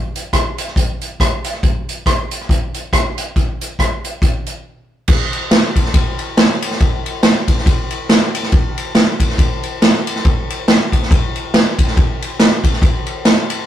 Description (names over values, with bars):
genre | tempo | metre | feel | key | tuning
gospel | 140 BPM | 4/4 | swing 57% on 8ths | none | none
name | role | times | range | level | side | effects
swinging big-band drum kit | drums | 0.2-13.6 s | crash cymbal, hi-hat, kick drum, ride cymbal, rim click, snare drum | -13 LUFS | equal | none
room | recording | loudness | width
light reverb | rough rehearsal-room recording, tube saturation | -13 LUFS | side -11 dB against mid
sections
0.0-5.1 A section; 5.1-13.7 B section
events
break 4.7-5.1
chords
none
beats
0.33 0.76 1.20 | 1.63 2.06 2.49 2.93 | 3.36 3.79 4.22 4.66 | 5.09 5.52 5.95 6.38 | 6.81 7.24 7.67 8.10 | 8.53 8.96 9.39 9.82 | 10.25 10.68 11.11 11.54 | 11.96 12.39 12.82 13.26